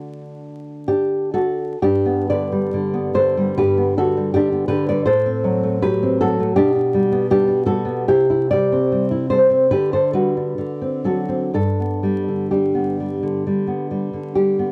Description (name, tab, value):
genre	romantic piece for solo classical guitar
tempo	60-83 BPM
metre	4/4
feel	rubato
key	G major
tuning	A4 = 441 Hz
part	nylon-string guitar	solo	0.0-14.7 s	G2 to D5	-19 LUFS	equal	none
room	moderate booth ambience, RT60 0.2 s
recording	vinyl crackle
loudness	-19 LUFS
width	mono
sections	0.0-14.7 A section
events	none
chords	0.0 D; 1.8 G; 5.0 F#dim/A; 6.5 G/B; 8.1 C; 9.7 G/D; 10.6 D7; 11.5 G